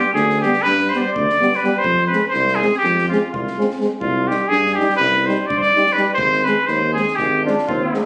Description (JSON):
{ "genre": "balkan folk, Balkan brass band", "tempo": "248 BPM (eighths)", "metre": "9/8", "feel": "straight", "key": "unclear", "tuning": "A4 = 440 Hz", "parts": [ { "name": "cornet with straight mute", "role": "melody", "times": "0.0-8.1 s", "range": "F4 to D5", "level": "-19 LUFS", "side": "equal", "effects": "none" }, { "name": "mellow French horn", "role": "accompaniment", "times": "0.0-8.0 s", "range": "B3 to Eb4", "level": "-28 LUFS", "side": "equal", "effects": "none" }, { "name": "warm tuba", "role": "bass", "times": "0.1-7.8 s", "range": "Ab1 to G2", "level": "-25 LUFS", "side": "equal", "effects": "none" }, { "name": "compact cocktail drum kit", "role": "percussion", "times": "0.2-8.0 s", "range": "kick drum, snare drum", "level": "-36 LUFS", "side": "equal", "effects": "none" }, { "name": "warm euphonium", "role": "accompaniment", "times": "0.4-8.0 s", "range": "G3 to Ab3", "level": "-24 LUFS", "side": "equal", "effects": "none" }, { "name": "mellow flugelhorn", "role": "second line", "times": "7.4-8.1 s", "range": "C4 to D4", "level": "-23 LUFS", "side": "equal", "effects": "none" } ], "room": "light reverb", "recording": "recorded on a phone in the room, studio reverb", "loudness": "-17 LUFS", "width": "mono", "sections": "0.0-8.1 A section", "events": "none", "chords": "0.0 G; 1.8 Fm; 4.0 Cm; 6.2 Ab", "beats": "0.14 0.38 0.62 0.86 1.10 1.35 1.59 | 1.83 2.07 2.31 2.55 2.79 3.04 3.28 3.52 3.76 | 4.00 4.24 4.49 4.73 4.97 5.21 5.45 5.69 5.94 | 6.18 6.42 6.66 6.91 7.15 7.39 7.63 7.88" }